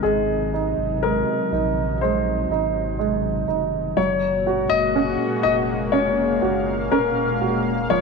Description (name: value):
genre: pop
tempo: 61 BPM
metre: 4/4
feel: straight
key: unclear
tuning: A4 = 445 Hz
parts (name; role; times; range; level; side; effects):
- warm baby grand piano; melody; 0.0-8.0 s; Ab4 to Eb5; -23 LUFS; left 7 dB; none
- warm upright piano; accompaniment; 0.0-8.0 s; F3 to Gb4; -24 LUFS; right 10 dB; none
- lush unison pad; sustained chords; 0.0-8.0 s; Bb2 to F5; -25 LUFS; left 2 dB; chorus
- warm sub bass; bass; 0.0-8.0 s; Eb1 to Bb1; -31 LUFS; left 1 dB; none
room: wet echo chamber reverb, RT60 2.2 s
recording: 1960s-style stereo with parts hard left and right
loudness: -19 LUFS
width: side -4 dB against mid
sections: 0.0-4.0 A section; 4.0-8.0 B section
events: none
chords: 0.0 Ab; 4.0 Gbadd9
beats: | 0.04 1.02 2.01 2.99 | 3.98 4.96 5.94 6.92 | 7.91